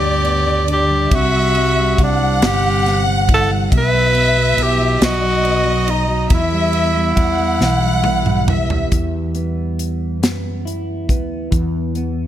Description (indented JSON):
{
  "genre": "six-eight pop ballad",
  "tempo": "46 BPM (dotted quarters)",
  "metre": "6/8",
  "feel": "straight",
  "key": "E minor",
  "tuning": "A4 = 440 Hz",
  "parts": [
    { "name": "clear tenor saxophone", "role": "melody", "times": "0.0-8.5 s", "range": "D4 to B4", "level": "-18 LUFS", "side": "right 1 dB", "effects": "none" },
    { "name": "rich studio violin section", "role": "second line", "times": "0.0-8.9 s", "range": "D5 to F#5", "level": "-20 LUFS", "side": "left 1 dB", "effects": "none" },
    { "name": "clean electric guitar", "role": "accompaniment", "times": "0.0-12.3 s", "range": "G2 to E4", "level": "-22 LUFS", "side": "right 1 dB", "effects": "double-tracked left and right" },
    { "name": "fretless electric bass", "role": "bass", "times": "0.0-12.3 s", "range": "G1 to F#2", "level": "-20 LUFS", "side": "equal", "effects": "wide subtle chorus" },
    { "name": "modern studio drum kit", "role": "drums", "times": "0.2-12.2 s", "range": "hi-hat, kick drum, ride cymbal, snare drum, toms", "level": "-18 LUFS", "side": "equal", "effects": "none" }
  ],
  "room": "light reverb, small room ambience",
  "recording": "none",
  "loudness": "-14 LUFS",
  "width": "side -11 dB against mid",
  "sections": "0.0-8.9 A section; 8.9-12.3 B section",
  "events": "drum fill 7.6-8.9",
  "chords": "0.0 G; 1.1 C; 3.7 Bsus4; 5.0 B; 6.3 Em; 8.9 E5",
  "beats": "| 1.12 2.42 | 3.72 5.01 | 6.31 7.61 | 8.92 10.23 | 11.52"
}